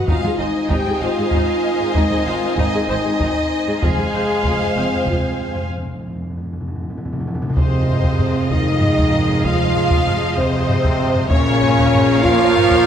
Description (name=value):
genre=cinematic, epic orchestral film score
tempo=64 BPM (dotted quarters)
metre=6/8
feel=straight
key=unclear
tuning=A4 = 440 Hz
part: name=warm symphonic violin section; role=melody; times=0.0-12.9 s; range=C5 to Ab5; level=-27 LUFS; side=left 3 dB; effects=none
part: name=warm symphonic violin section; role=second line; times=0.0-12.9 s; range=Ab4 to G5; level=-26 LUFS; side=left 2 dB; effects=none
part: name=warm chamber viola section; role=accompaniment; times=0.0-12.9 s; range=Eb4 to F5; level=-26 LUFS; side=equal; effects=none
part: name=mellow French horn section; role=sustained chords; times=0.0-12.9 s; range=Ab3 to G4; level=-20 LUFS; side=left 1 dB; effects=none
part: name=warm symphonic string section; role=sustained chords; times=0.0-12.9 s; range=Ab3 to F5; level=-26 LUFS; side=left 1 dB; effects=none
part: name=warm trombone section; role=sustained chords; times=0.1-12.9 s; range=C3 to C4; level=-26 LUFS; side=right 4 dB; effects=none
part: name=clear symphonic double bass section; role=bass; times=0.1-12.9 s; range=F1 to Bb1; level=-25 LUFS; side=right 2 dB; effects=none
part: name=rich symphonic cello section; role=bass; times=0.1-12.9 s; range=F2 to Bb2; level=-26 LUFS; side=right 2 dB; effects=none
part: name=taiko ensemble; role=drums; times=0.1-12.9 s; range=none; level=-21 LUFS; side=equal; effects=none
part: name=timpani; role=percussion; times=3.8-7.6 s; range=F2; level=-26 LUFS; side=left 1 dB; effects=none
room=wet scoring stage reverb, RT60 1.6 s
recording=none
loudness=-15 LUFS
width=side -8 dB against mid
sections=0.0-7.6 A section; 7.6-12.9 B section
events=timpani fill 3.8-7.6; break 5.7-7.6; drum fill 7.1-7.6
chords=0.1 Ab; 3.8 Fm; 7.6 Fm7; 11.3 Bbm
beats=| 0.09 1.02 | 1.96 2.90 | 3.83 4.77 | 5.70 6.64 | 7.57 8.51 | 9.44 10.37 | 11.31 12.24